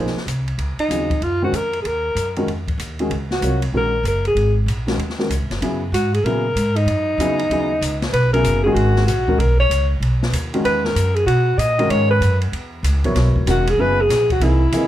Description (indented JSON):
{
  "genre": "modal jazz",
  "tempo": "191 BPM",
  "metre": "4/4",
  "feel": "swing 64% on 8ths",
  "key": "Ab mixolydian, B major from 5.6 s",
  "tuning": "A4 = 440 Hz",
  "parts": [
    { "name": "dark baby grand piano", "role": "accompaniment", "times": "0.0-14.9 s", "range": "Db3 to D#5", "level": "-22 LUFS", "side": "equal", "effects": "none" },
    { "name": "upright bass", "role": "bass", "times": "0.0-14.9 s", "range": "E1 to B2", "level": "-20 LUFS", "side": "equal", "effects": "none" },
    { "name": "open jazz drum kit", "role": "drums", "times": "0.1-14.8 s", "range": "hi-hat, kick drum, ride cymbal, snare drum", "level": "-28 LUFS", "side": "left 1 dB", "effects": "none" },
    { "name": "breathy alto saxophone", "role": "melody", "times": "0.8-14.9 s", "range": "Eb4 to D#5", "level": "-19 LUFS", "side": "equal", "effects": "plate reverb" }
  ],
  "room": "light reverb",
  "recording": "none",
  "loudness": "-16 LUFS",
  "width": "side -12 dB against mid",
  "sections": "0.0-5.6 A section; 5.6-14.9 B section",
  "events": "none",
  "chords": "0.0 Ab9sus4; 5.6 Bmaj9; 10.6 Emaj9"
}